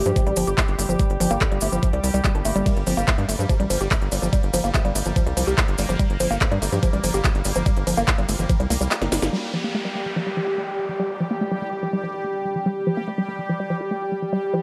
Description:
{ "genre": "psychedelic trance", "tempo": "144 BPM", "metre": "4/4", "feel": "straight", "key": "G minor", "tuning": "A4 = 440 Hz", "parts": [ { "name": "bubbling stepped-filter texture", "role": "sustained chords", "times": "0.0-14.6 s", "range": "G3 to G4", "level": "-31 LUFS", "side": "equal", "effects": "chorus, built-in reverb, sidechain pumping" }, { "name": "tight sequencer bass", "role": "bass", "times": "0.0-9.3 s", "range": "G1 to G2", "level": "-27 LUFS", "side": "equal", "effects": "none" }, { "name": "formant-sweep wobble bass", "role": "second line", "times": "0.1-9.3 s", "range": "F3 to C4", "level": "-38 LUFS", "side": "equal", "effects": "none" }, { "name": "woody wave-folded pluck", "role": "riff", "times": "0.1-14.6 s", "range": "F3 to A4", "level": "-28 LUFS", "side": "equal", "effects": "chorus, cassette tape, sidechain pumping, delay" }, { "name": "techno drum kit", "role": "drums", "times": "0.1-9.3 s", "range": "handclaps, hi-hat, ride cymbal, snare drum", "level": "-30 LUFS", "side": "equal", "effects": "none" }, { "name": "maracas", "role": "percussion", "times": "0.1-9.3 s", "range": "none", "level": "-34 LUFS", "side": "equal", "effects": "none" }, { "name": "electronic kick drum", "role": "drums", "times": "0.2-8.6 s", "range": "none", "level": "-23 LUFS", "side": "equal", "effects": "none" }, { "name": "downlifter", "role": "sound effects", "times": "9.3-12.7 s", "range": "none", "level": "-36 LUFS", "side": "equal", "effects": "none" } ], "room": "light reverb, digital ambience", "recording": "none", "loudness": "-22 LUFS", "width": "mono", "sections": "0.0-9.3 A section; 9.3-14.6 B section", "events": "drop 0.0-9.3; kick drops out 8.9-9.3; drum fill 9.0-9.3; band accent 9.2", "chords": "0.0 G5", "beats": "0.16 0.58 | 0.99 1.41 1.83 2.25 | 2.66 3.08 3.50 3.91 | 4.33 4.75 5.16 5.58 | 6.00 6.41 6.83 7.25 | 7.66 8.08 8.49 8.91 | 9.33 9.74 10.16 10.58 | 10.99 11.41 11.83 12.24 | 12.66 13.08 13.49 13.91 | 14.33" }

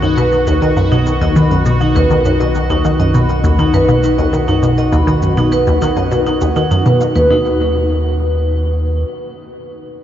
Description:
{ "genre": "ambient, sequencer-driven space music", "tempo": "101 BPM", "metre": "4/4", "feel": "straight", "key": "unclear", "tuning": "A4 = 440 Hz", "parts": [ { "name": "vibraphone with hard mallets", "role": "arpeggios", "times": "0.0-7.6 s", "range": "D#4 to B5", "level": "-16 LUFS", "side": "equal", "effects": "auto-pan, tape echo" }, { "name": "resonant blip pluck", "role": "riff", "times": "0.0-7.6 s", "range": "D#2 to D#3", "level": "-14 LUFS", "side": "equal", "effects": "phaser, tape echo" }, { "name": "round analog bass", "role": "bass", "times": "0.0-9.0 s", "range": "B1 to Eb2", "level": "-19 LUFS", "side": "equal", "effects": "none" }, { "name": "cabasa and woodblock", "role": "percussion", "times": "0.0-7.3 s", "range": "none", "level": "-35 LUFS", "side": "left 3 dB", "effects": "tape echo" }, { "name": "bubbling stepped-filter texture", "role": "texture", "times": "0.0-7.3 s", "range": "Gb4", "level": "-24 LUFS", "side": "right 1 dB", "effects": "chorus, built-in reverb" } ], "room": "wet huge ambient reverb, RT60 8.2 s", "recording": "worn, warbling old tape, cassette tape, warbly pitch drift, nothing above 7.5 kHz", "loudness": "-11 LUFS", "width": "side -11 dB against mid", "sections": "0.0-7.3 A section; 7.3-9.7 B section", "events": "none", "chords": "0.0 B; 7.3 N.C.", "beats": "| 0.17 0.77 1.36 1.96 | 2.55 3.15 3.74 4.33 | 4.93 5.52 6.12 6.71 | 7.30 7.90 8.49" }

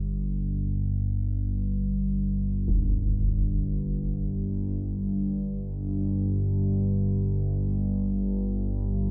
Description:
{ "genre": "dark ambient drone", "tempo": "free time", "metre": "none", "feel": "none", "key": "unclear", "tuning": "A4 = 439 Hz", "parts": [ { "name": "analog drone", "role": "drone", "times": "0.0-9.1 s", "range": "G1 to G2", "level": "-28 LUFS", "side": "equal", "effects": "chorus" }, { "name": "concert bass drum", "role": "percussion", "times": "2.7-2.9 s", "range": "none", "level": "-33 LUFS", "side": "equal", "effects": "low-pass filter on kick" } ], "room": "light reverb", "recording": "none", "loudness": "-28 LUFS", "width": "mono", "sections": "0.0-9.1 A section", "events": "none", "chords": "none", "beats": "free time" }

